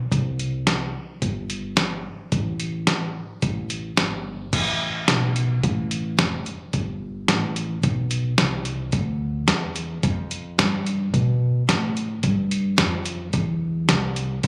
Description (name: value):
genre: honky-tonk and classic country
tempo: 109 BPM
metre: 4/4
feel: straight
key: unclear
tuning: A4 = 440 Hz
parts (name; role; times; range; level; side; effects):
- upright bass; bass; 0.0-14.5 s; F1 to B2; -27 LUFS; equal; none
- dusty soul sampler-style drum kit; drums; 0.1-14.5 s; crash cymbal, hi-hat, kick drum, snare drum; -25 LUFS; equal; none
room: light reverb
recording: recorded on a phone in the room, club reverb, compression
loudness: -24 LUFS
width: mono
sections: 0.0-4.5 A section; 4.5-14.5 B section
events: none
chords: none